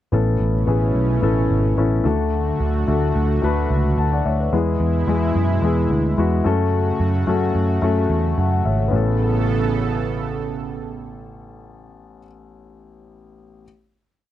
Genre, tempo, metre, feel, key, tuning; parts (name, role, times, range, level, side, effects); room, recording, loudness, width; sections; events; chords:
piano-driven pop; 109 BPM; 4/4; straight; A major; A4 = 440 Hz
dark grand piano; accompaniment; 0.1-13.7 s; A1 to A5; -22 LUFS; left 6 dB
chorused pulse-width pad; sustained chords; 0.1-11.9 s; B2 to A4; -26 LUFS; right 5 dB
vintage muted picked electric bass; bass; 0.1-12.2 s; G#1 to F#2; -20 LUFS; right 1 dB
little or no reverb; dry, close 1970s-style studio recording; -17 LUFS; side -12 dB against mid
0.1-8.9 verse; 8.9-11.1 final chord
0.1 Aadd9; 2.1 D; 4.5 E; 6.5 F#m; 8.9 Aadd9